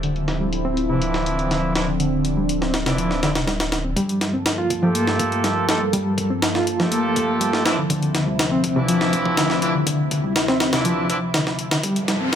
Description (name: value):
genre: breakbeat, breaks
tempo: 122 BPM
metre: 4/4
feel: straight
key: G minor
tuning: A4 = 440 Hz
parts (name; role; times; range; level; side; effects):
- phased analog pad; sustained chords; 0.0-12.4 s; D2 to A4; -25 LUFS; left 1 dB; phaser, chorus, sidechain pumping
- reed electric piano; riff; 0.0-12.3 s; C3 to F4; -23 LUFS; equal; fast tremolo, tube saturation, low-pass filter, dub echo
- saturated sub bass; bass; 0.0-3.9 s; D1; -28 LUFS; equal; none
- breakbeat sampler-style drum kit; drums; 0.0-12.4 s; hi-hat, kick drum, snare drum; -23 LUFS; equal; high-pass filter on hats, studio reverb, high-pass filter on snare, high-pass filter on kick
- bright horn section; stabs; 0.9-11.2 s; E3 to A4; -25 LUFS; right 2 dB; low-pass filter, dub echo
- riser; sound effects; 11.9-12.4 s; none; -28 LUFS; left 1 dB; none
room: moderate plate reverb, RT60 1.2 s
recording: high-pass filter, low-pass filter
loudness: -18 LUFS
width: side -9 dB against mid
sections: 0.0-4.0 A section; 4.0-12.4 B section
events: filter sweep 0.0-4.0; build-up 4.0-12.4; filter sweep on horn section 4.0-12.4; riser 11.9-12.4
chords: 0.0 Dm9; 4.0 Gm9; 7.7 Dm9; 11.8 Gm9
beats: | 0.03 0.52 1.02 1.51 | 2.00 2.49 2.98 3.48 | 3.97 4.46 4.95 5.44 | 5.93 6.43 6.92 7.41 | 7.90 8.39 8.88 9.38 | 9.87 10.36 10.85 11.34 | 11.84 12.33